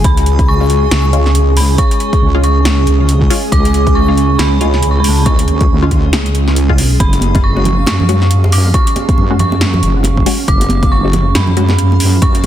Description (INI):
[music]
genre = deep dubstep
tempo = 138 BPM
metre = 4/4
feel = swing 59% on 16ths, half-time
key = unclear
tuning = A4 = 440 Hz
[part]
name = deep dark ambient pad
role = sustained chords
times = 0.0-12.5 s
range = C#4 to G#4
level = -20 LUFS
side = right 3 dB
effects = chorus, built-in reverb
[part]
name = wobble bass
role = bass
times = 0.0-12.5 s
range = F#1 to F#2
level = -12 LUFS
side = equal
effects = chorus
[part]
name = deep house drum kit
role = drums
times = 0.0-12.5 s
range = hi-hat, snare drum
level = -19 LUFS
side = equal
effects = overdrive
[part]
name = electronic kick drum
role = drums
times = 0.0-12.3 s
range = none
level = -13 LUFS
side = equal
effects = overdrive
[part]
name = backwards swelling texture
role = texture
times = 0.0-12.5 s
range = E#3 to E#5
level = -22 LUFS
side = left 1 dB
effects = built-in reverb
[part]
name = dark detuned synth bell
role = melody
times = 0.1-12.5 s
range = A5 to D6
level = -20 LUFS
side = right 1 dB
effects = chorus, vintage 12-bit sampler grit, dub echo
[part]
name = filtered dub chord stab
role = stabs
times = 0.6-11.7 s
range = G#3 to F#4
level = -22 LUFS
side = left 3 dB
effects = phaser, dub echo
[part]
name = congas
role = percussion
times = 7.0-12.5 s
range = none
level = -20 LUFS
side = right 2 dB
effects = none
[sound]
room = light reverb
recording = dense, heavily limited modern master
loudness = -9 LUFS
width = side -11 dB against mid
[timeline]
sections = 0.0-12.5 A section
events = none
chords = 0.0 C#; 7.0 F#sus2